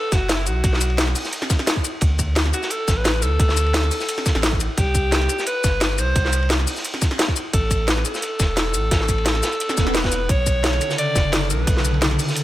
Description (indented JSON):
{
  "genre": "liquid drum and bass",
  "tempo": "174 BPM",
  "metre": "4/4",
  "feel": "swing 53% on 16ths",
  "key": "B minor",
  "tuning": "A4 = 442 Hz",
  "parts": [
    { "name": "edgy alto saxophone", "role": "melody", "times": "0.0-12.0 s", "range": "E4 to D5", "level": "-25 LUFS", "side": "equal", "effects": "ping-pong delay" },
    { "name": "saturated sub bass", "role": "bass", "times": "0.1-12.2 s", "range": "E1 to D2", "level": "-22 LUFS", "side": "equal", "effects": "none" },
    { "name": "crunchy breakbeat drum kit", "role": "drums", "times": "0.1-12.4 s", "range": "hi-hat, ride cymbal, snare drum", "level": "-27 LUFS", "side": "equal", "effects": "high-pass filter on cymbals, high-pass filter on hats, high-pass filter on snare, high-pass filter on room" },
    { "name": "electronic kick drum", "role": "drums", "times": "0.1-11.7 s", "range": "none", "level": "-20 LUFS", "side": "equal", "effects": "none" },
    { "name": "garage drum kit", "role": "drums", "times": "0.1-12.4 s", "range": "hi-hat, shaker, snare drum", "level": "-23 LUFS", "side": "left 1 dB", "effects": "none" },
    { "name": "swell", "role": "sound effects", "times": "9.7-10.3 s", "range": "none", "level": "-28 LUFS", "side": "right 2 dB", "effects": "none" },
    { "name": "airy breathy pad", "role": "sustained chords", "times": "10.3-12.4 s", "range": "C#3 to A4", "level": "-25 LUFS", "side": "left 1 dB", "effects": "chorus, sidechain pumping" }
  ],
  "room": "light reverb, studio reverb",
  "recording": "none",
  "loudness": "-18 LUFS",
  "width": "side -14 dB against mid",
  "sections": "0.0-12.4 A section",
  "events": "swell 9.7-10.3",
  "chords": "0.0 B5; 2.0 D5; 4.8 C5; 7.4 A5; 10.3 Bm9"
}